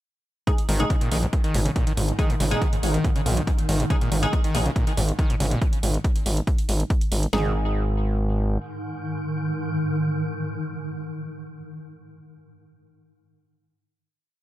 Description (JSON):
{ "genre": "driving peak-time techno", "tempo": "140 BPM", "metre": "4/4", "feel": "straight", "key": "unclear", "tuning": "A4 = 440 Hz", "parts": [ { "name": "screaming distorted acid line", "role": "riff", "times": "0.5-7.5 s", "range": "G#2 to D#3", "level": "-28 LUFS", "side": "equal", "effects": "distortion, chorus, sidechain pumping, tape echo" }, { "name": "wavetable chord stab", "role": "stabs", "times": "0.5-4.3, 7.3-11.8 s", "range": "G#3 to G#4", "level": "-30 LUFS", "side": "equal", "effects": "sidechain pumping, tape echo" }, { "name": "swarming drone", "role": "drone", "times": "1.7-11.6 s", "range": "G#2 to D#3", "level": "-30 LUFS", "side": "equal", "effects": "built-in reverb, sidechain pumping" }, { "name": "electronic hi-hat", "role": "drums", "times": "0.5-7.3 s", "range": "none", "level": "-33 LUFS", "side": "right 3 dB", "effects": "none" }, { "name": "techno drum kit", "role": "drums", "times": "0.5-7.4 s", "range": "kick drum, snare drum, toms", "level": "-23 LUFS", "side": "equal", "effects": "none" }, { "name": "gritty driven synth bass", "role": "bass", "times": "0.7-8.6 s", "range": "G#1 to B1", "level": "-23 LUFS", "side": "equal", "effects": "sidechain pumping" } ], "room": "light reverb", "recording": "echo-heavy mix", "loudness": "-21 LUFS", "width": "side -14 dB against mid", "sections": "0.5-7.3 groove; 7.3-10.8 final chord", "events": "none", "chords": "0.5 G#5" }